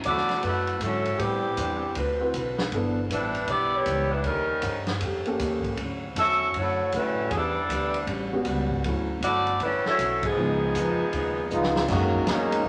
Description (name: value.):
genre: jazz, big band swing.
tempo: 157 BPM.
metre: 4/4.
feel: swing 64% on 8ths.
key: D major.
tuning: A4 = 439 Hz.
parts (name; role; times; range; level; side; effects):
upright bass; bass; 0.0-12.7 s; G1 to A2; -34 LUFS; equal; none.
vintage drum kit; drums; 0.0-12.6 s; crash cymbal, hi-hat, kick drum, ride cymbal, snare drum; -36 LUFS; equal; none.
warm saxophone section; melody; 0.1-11.8 s; E3 to E5; -27 LUFS; equal; none.
picked plugged-in steel-string acoustic guitar; accompaniment; 0.1-12.7 s; G2 to B4; -36 LUFS; equal; none.
warm concert grand piano; accompaniment; 2.2-3.0, 5.3-12.7 s; E#3 to B4; -32 LUFS; equal; none.
brilliant trombone section; second line; 11.5-12.7 s; D#3 to F#4; -27 LUFS; equal; none.
room: wet large studio reverb, RT60 1.3 s.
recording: none.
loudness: -26 LUFS.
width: mono.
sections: 0.0-11.9 A section.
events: band accent 10.2; drum fill 11.5-11.9.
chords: 0.0 Dmaj9; 1.2 Am11; 2.0 D13; 2.7 G6; 4.2 Eb7#11; 5.8 Dmaj9; 7.3 Em7; 8.1 A13; 8.8 Dmaj9; 10.4 C#9; 11.9 F#69.